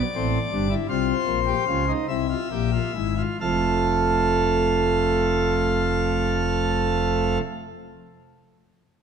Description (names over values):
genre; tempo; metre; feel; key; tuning
classical, baroque-style 3-part fugue for pipe organ; 43-56 BPM (dotted quarters); 6/8; straight; unclear; A4 = 439 Hz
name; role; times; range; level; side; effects
pipe organ, principal chorus; solo; 0.0-7.4 s; F1 to F5; -20 LUFS; equal; none
room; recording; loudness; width
wet scoring stage reverb, RT60 1.9 s; none; -20 LUFS; side -7 dB against mid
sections
0.0-3.4 A section; 3.4-9.0 B section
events
slowing down 0.0-3.4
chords
0.0 G5; 0.9 C7sus4; 2.1 C7; 3.4 F